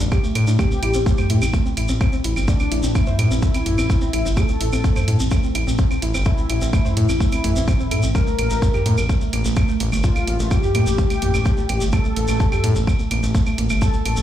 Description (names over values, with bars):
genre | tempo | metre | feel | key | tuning
melodic techno | 127 BPM | 4/4 | straight | A phrygian | A4 = 440 Hz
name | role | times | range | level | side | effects
soft round pluck | arpeggios | 0.0-14.2 s | G3 to C5 | -26 LUFS | right 1 dB | wide subtle chorus, sidechain pumping, ping-pong delay
round analog bass | bass | 0.0-14.2 s | G1 to A2 | -20 LUFS | equal | sidechain pumping
shekere | percussion | 0.0-14.2 s | none | -33 LUFS | right 1 dB | none
electronic kick drum | drums | 0.1-13.9 s | none | -18 LUFS | equal | none
house drum kit | drums | 0.1-14.2 s | claves, hi-hat, toms | -26 LUFS | right 1 dB | sidechain pumping on hats, sidechain pumping on perc, sidechain pumping on toms
fat analog lead | melody | 0.6-14.2 s | D4 to Bb4 | -27 LUFS | left 2 dB | wide subtle chorus, cassette tape, sidechain pumping, ping-pong delay
room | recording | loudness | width
little or no reverb | played on a big sound system in a bare room, large studio reverb | -17 LUFS | side -11 dB against mid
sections
0.0-14.2 A section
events
none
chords
0.0 Gsus2; 0.6 Am; 8.1 Gmadd9